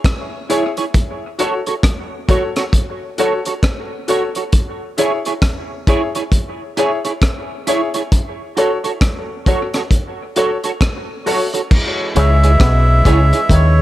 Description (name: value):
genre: dub reggae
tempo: 67 BPM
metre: 4/4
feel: swing 61% on 16ths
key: C# minor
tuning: A4 = 442 Hz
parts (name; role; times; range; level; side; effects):
- crunchy breakbeat drum kit; drums; 0.0-13.8 s; crash cymbal, hi-hat, kick drum, rim click; -16 LUFS; equal; none
- semi-hollow electric guitar; accompaniment; 0.5-13.4 s; E4 to C#5; -22 LUFS; right 5 dB; analog chorus, dub echo
- clear grand piano; stabs; 0.5-13.8 s; E4 to C#5; -22 LUFS; left 4 dB; dub echo
- warm horn section; second line; 11.7-13.8 s; E3 to E4; -25 LUFS; right 4 dB; dub echo
- melodica; melody; 12.2-13.8 s; C#5 to E5; -17 LUFS; equal; dub echo
- muted clav; riff; 12.2-13.8 s; B2 to D#3; -28 LUFS; left 4 dB; auto-wah, dub echo
- deep dub fingered electric bass; bass; 12.2-13.8 s; B1 to D#2; -11 LUFS; equal; none
room: light reverb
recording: none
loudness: -14 LUFS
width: side -15 dB against mid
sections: 0.0-11.7 A section; 11.7-13.8 B section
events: none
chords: 0.0 C#m; 0.9 F#m; 4.5 C#m; 8.1 F#m; 11.7 C#m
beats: 0.05 | 0.94 1.84 2.74 3.63 | 4.53 5.43 6.33 7.22 | 8.12 9.02 9.92 10.81 | 11.71 12.61 13.50